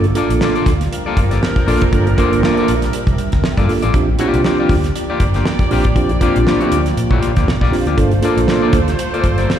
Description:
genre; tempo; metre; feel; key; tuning
funk; 119 BPM; 4/4; swing 56% on 16ths; G dorian; A4 = 440 Hz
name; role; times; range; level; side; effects
soft string machine; sustained chords; 0.0-9.6 s; F3 to E5; -25 LUFS; equal; phaser, ensemble chorus
mellow tonewheel organ; stabs; 0.0-8.8 s; Bb3 to Bb4; -18 LUFS; right 4 dB; slow rotary speaker, slapback echo
vintage muted fingered electric bass; bass; 0.0-9.4 s; F#1 to Bb2; -18 LUFS; equal; none
damped 70s drum kit; drums; 0.0-9.6 s; hi-hat, kick drum, snare drum; -18 LUFS; equal; none
clean electric guitar; accompaniment; 0.2-9.5 s; Bb3 to D5; -21 LUFS; left 6 dB; slapback echo
warm horn section; second line; 0.9-9.6 s; F3 to D5; -24 LUFS; right 1 dB; slapback echo
room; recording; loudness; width
small room ambience; live gig heard through the venue's PA, recital hall reverb; -13 LUFS; side -10 dB against mid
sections
0.0-9.6 A section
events
none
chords
0.0 Gm9; 3.9 Bb6; 8.0 Gm9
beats
0.41 0.92 1.42 | 1.93 2.43 2.93 3.44 | 3.94 4.45 4.95 5.46 | 5.96 6.46 6.97 7.47 | 7.98 8.48 8.99 9.49

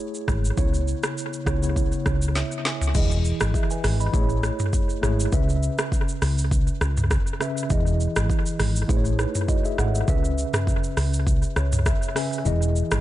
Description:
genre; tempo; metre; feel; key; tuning
afrobeats; 101 BPM; 4/4; swing 55% on 16ths; unclear; A4 = 438 Hz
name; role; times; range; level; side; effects
mellow tine electric piano; accompaniment; 0.0-13.0 s; C#3 to B5; -28 LUFS; equal; medium stereo tremolo, tape echo
afro-pop drum kit; drums; 0.1-13.0 s; crash cymbal, hi-hat, kick drum, rim click, shaker, snare drum, toms; -24 LUFS; equal; overdrive, tape echo
woody fretless electric bass; bass; 0.3-13.0 s; E1 to C#2; -23 LUFS; equal; ensemble chorus
room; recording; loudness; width
little or no reverb; echo-heavy mix, nothing above 10.4 kHz; -21 LUFS; side -14 dB against mid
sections
0.0-3.0 A section; 3.0-13.0 B section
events
tine electric piano fill 1.8-3.0, 11.3-12.5; drum fill 2.4-3.0; kick muted 12.5-13.0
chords
0.0 Amaj7; 0.6 C#m7; 3.0 Emaj7; 4.1 Amaj7; 5.3 C#m7; 7.7 Emaj7; 8.9 Amaj7; 10.1 C#m7; 12.5 Emaj7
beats
| 0.57 1.17 1.76 2.36 | 2.95 3.54 4.14 4.73 | 5.33 5.92 6.51 7.11 | 7.70 8.30 8.89 9.48 | 10.08 10.67 11.27 11.86 | 12.46

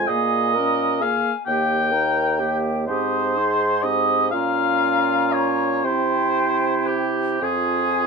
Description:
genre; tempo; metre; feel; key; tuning
classical, slow romantic movement for wind quintet; 36-44 BPM (dotted quarters); 6/8; rubato; unclear; A4 = 441 Hz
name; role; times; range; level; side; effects
warm oboe; second line; 0.0-8.1 s; G4 to G5; -21 LUFS; equal; none
clear clarinet; accompaniment; 0.0-8.1 s; E4 to Bb4; -27 LUFS; right 6 dB; none
mellow French horn; accompaniment; 0.0-8.1 s; Bb3 to Eb4; -29 LUFS; equal; none
mellow bassoon; bass; 0.0-8.1 s; Eb2 to C3; -26 LUFS; right 3 dB; none
mellow concert flute; melody; 0.1-8.1 s; G5 to Eb6; -28 LUFS; left 6 dB; none
room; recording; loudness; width
light reverb; minimal, uncompressed stereo recording; -18 LUFS; side -4 dB against mid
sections
0.0-8.1 A section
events
none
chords
0.1 Bbm7; 1.5 Eb; 2.9 Abmaj7; 4.3 Bbm; 5.8 C; 7.4 Fm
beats
0.08 | 1.46 2.88 | 4.33 5.84 | 7.41

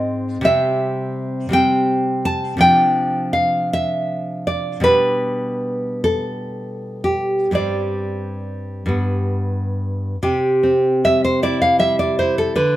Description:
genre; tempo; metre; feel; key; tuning
romantic piece for solo classical guitar; 37-57 BPM (dotted quarters); 6/8; rubato; C major; A4 = 440 Hz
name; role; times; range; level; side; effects
nylon-string guitar; solo; 0.0-12.8 s; G2 to A5; -16 LUFS; equal; none
room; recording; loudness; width
moderate large studio reverb, RT60 0.9 s; band playing live in one room; -16 LUFS; side -14 dB against mid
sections
0.0-10.2 A section; 10.2-12.8 B section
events
none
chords
0.4 C; 2.6 Dm7/C; 4.8 G/B; 7.5 Gsus4; 8.9 G; 10.2 C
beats
| 0.45 1.53 | 2.60 3.71 | 4.84 6.04 | 7.55 8.90 | 10.21 11.41 | 12.53

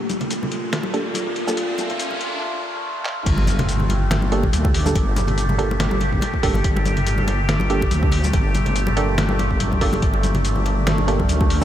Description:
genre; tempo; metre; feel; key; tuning
deep dubstep; 142 BPM; 4/4; swing 54% on 16ths, half-time; G minor; A4 = 439 Hz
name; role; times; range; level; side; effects
overtone-sweeping drone; sustained chords; 0.0-11.6 s; Bb2 to G4; -25 LUFS; equal; chorus, built-in reverb
riser and impact; sound effects; 0.0-5.0 s; none; -29 LUFS; equal; none
trip hop sampler-style drum kit; drums; 0.1-11.6 s; crash cymbal, handclaps, hi-hat, shaker, snare drum; -28 LUFS; left 1 dB; studio reverb
congas; percussion; 0.1-11.6 s; none; -27 LUFS; left 2 dB; dub echo
filtered dub chord stab; stabs; 0.9-1.6, 4.3-11.6 s; Bb3 to A4; -27 LUFS; right 3 dB; chorus, dub echo
wobble bass; bass; 3.3-11.6 s; G1 to D2; -21 LUFS; equal; chorus
electronic kick drum; drums; 3.3-11.5 s; none; -21 LUFS; equal; studio reverb
room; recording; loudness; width
moderate huge ambient reverb, RT60 7.4 s; dreamy mix soaked in reverb, high-pass filter; -18 LUFS; side -11 dB against mid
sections
0.0-3.3 A section; 3.3-11.6 B section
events
build-up 0.0-3.3; riser 0.0-2.4; filter sweep on synth stab 0.0-3.3; break 2.4-3.3; drum fill 3.1; drop 3.3-11.6; impact 3.3-5.0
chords
0.0 Gmadd9 (rootless); 3.3 Gmadd9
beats
0.30 0.73 1.15 | 1.57 2.00 2.42 2.84 | 3.26 3.69 4.11 4.53 | 4.95 5.38 5.80 6.22 | 6.64 7.07 7.49 7.91 | 8.33 8.76 9.18 9.60 | 10.02 10.45 10.87 11.29

